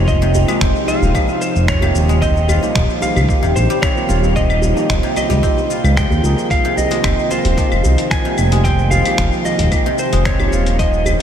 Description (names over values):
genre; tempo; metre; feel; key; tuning
organic downtempo; 112 BPM; 4/4; straight; F minor; A4 = 440 Hz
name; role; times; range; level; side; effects
electric slide guitar; melody; 0.0-11.2 s; C5 to Ab5; -21 LUFS; right 1 dB; ping-pong delay
tine electric piano; accompaniment; 0.0-11.2 s; F3 to Ab4; -24 LUFS; right 2 dB; wide subtle chorus, sidechain pumping, ping-pong delay
airy breathy pad; sustained chords; 0.0-11.2 s; Bb2 to G4; -25 LUFS; equal; chorus, sidechain pumping
guzheng; arpeggios; 0.0-11.2 s; C3 to F4; -22 LUFS; left 1 dB; ping-pong delay
smooth gliding synth bass; bass; 0.0-11.2 s; Eb1 to Eb2; -15 LUFS; equal; tube saturation, sidechain pumping
bronze singing bowl; texture; 0.0-11.2 s; Eb4 to C6; -33 LUFS; equal; none
dusty soul sampler-style drum kit; drums; 0.1-11.2 s; claves, finger snaps, hi-hat, shaker; -24 LUFS; left 2 dB; none
electronic kick drum; drums; 0.1-10.9 s; none; -19 LUFS; equal; none
djembe; percussion; 0.3-11.2 s; none; -26 LUFS; equal; none
room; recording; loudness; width
moderate huge ambient reverb, RT60 8.3 s; dreamy mix soaked in reverb; -13 LUFS; side -9 dB against mid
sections
0.0-11.2 A section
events
none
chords
0.0 Fm7; 2.2 Eb; 6.5 Fm7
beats
| 0.08 0.61 1.15 1.69 | 2.22 2.76 3.29 3.83 | 4.36 4.90 5.43 5.97 | 6.51 7.04 7.58 8.11 | 8.65 9.19 9.72 10.26 | 10.79